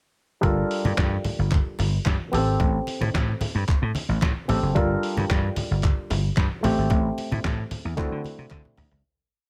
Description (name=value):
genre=disco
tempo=111 BPM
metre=4/4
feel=straight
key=G dorian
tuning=A4 = 439 Hz
part: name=auto-wah clav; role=accompaniment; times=0.4-9.0 s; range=D3 to Bb4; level=-30 LUFS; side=equal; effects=overdrive
part: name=vintage slap bass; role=bass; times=0.4-9.0 s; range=F#1 to D3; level=-27 LUFS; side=equal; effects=none
part: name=trip hop sampler-style drum kit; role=drums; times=0.4-9.0 s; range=hi-hat, kick drum, snare drum, toms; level=-28 LUFS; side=equal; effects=none
part: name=congas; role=percussion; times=0.4-8.9 s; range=none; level=-33 LUFS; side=equal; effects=none
part: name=group handclap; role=percussion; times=1.0-8.6 s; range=none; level=-39 LUFS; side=equal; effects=none
room=little or no reverb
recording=none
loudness=-24 LUFS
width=mono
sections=0.4-9.0 verse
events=fade-out 6.9-9.0; drum fill 8.5-9.0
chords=0.4 Gm9; 2.3 Am7; 4.8 Gm9; 6.6 Am7; 8.0 D9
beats=| 0.43 0.97 1.51 2.06 | 2.60 3.14 3.68 4.22 | 4.75 5.29 5.83 6.37 | 6.90 7.44 7.97 8.51